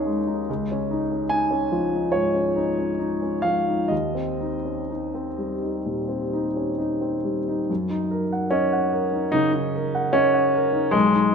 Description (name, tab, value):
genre	classical, impressionist solo piano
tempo	61-77 BPM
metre	4/4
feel	rubato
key	Eb mixolydian, F# major from 7.7 s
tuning	A4 = 440 Hz
part	warm baby grand piano	solo	0.0-11.3 s	B1 to Ab5	-21 LUFS	equal	none
room	moderate recital hall reverb, RT60 1.6 s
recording	close, detailed microphones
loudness	-21 LUFS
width	side -6 dB against mid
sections	0.0-7.7 A section; 7.7-11.3 B section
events	none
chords	0.5 Dbadd9; 3.9 Eb6; 7.7 F#6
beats	| 0.48 1.29 2.12 3.00 | 3.91 4.89 5.85 6.79 | 7.69 8.52 9.34 10.14 | 10.94